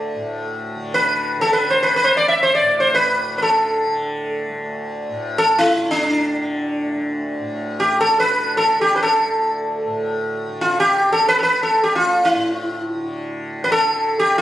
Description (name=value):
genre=indian classical, Hindustani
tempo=free time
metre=none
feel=none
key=D raga kafi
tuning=A4 = 440 Hz
part: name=sitar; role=melody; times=0.0-14.4 s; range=D4 to E5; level=-16 LUFS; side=equal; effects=none
part: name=tanpura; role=drone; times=0.0-14.4 s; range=D2 to D3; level=-27 LUFS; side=left 1 dB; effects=none
room=moderate studio reverb, RT60 0.6 s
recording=recorded on a phone in the room, club reverb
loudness=-16 LUFS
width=side -13 dB against mid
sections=0.0-7.4 A section; 7.4-14.4 A section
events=none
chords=none